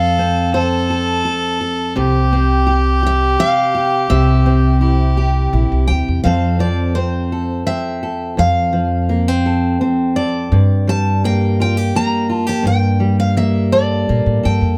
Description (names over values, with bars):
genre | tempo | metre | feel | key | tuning
acoustic folk duo or small band | 84 BPM | 3/4 | straight | F major | A4 = 439 Hz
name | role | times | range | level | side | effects
picked steel-string acoustic guitar | melody | 0.0-14.8 s | C5 to Bb5 | -23 LUFS | equal | none
warm fiddle | second line | 0.0-5.8 s | G4 to A4 | -22 LUFS | equal | none
fingerpicked steel-string acoustic guitar | accompaniment | 0.0-14.8 s | F2 to A4 | -20 LUFS | equal | none
upright bass | bass | 0.0-14.8 s | Bb1 to Bb2 | -19 LUFS | equal | none
room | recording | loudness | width
light reverb | none | -16 LUFS | mono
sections
0.0-6.2 A section; 6.2-14.8 B section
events
none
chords
0.0 F; 2.0 C; 6.2 F; 10.5 Gmadd9